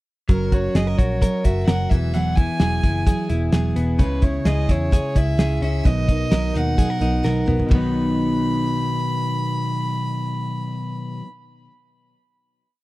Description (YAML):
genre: jangly indie pop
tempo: 130 BPM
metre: 4/4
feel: straight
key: B major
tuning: A4 = 440 Hz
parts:
  - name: warm violin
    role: melody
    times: 0.3-11.2 s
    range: A#4 to B5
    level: -28 LUFS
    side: right 1 dB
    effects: none
  - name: picked steel-string acoustic guitar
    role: accompaniment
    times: 0.3-11.3 s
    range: B2 to A#4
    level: -27 LUFS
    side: right 4 dB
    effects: none
  - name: direct-recorded clean electric guitar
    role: arpeggios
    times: 0.3-11.3 s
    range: B2 to A#4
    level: -24 LUFS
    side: left 2 dB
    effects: none
  - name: vintage muted picked electric bass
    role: bass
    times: 0.3-11.2 s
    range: E1 to E2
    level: -23 LUFS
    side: equal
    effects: none
  - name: cloth-damped thuddy drum kit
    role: drums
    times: 0.3-7.8 s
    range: hi-hat, kick drum, ride cymbal, snare drum, toms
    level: -18 LUFS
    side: equal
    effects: none
room: light reverb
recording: dry, close 1970s-style studio recording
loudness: -18 LUFS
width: side -18 dB against mid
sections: 0.3-7.7 verse; 7.7-11.4 final chord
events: drum fill 7.2-7.7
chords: 0.3 F#; 1.9 Eadd9; 4.0 C#m; 5.9 Bmaj7; 7.7 B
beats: | 0.29 0.75 1.22 1.68 | 2.14 2.61 3.07 3.53 | 4.00 4.46 4.92 5.39 | 5.85 6.32 6.78 7.24 | 7.71 8.17 8.63 9.10 | 9.56 10.02 10.49 10.95